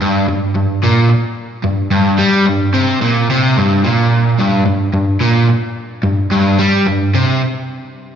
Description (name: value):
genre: rock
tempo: 109 BPM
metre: 4/4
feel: straight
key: G minor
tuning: A4 = 440 Hz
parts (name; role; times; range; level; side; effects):
- overdriven semi-hollow guitar; solo; 0.0-7.4 s; G2 to G3; -12 LUFS; equal; slapback echo
room: moderate plate reverb, RT60 3.4 s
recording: live gig heard through the venue's PA, recital hall reverb, nothing above 7.5 kHz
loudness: -12 LUFS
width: side -8 dB against mid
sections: 0.0-8.2 A section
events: none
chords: none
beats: | 0.02 0.56 1.11 1.66 | 2.21 2.75 3.30 3.85 | 4.40 4.95 5.50 6.05 | 6.60 7.15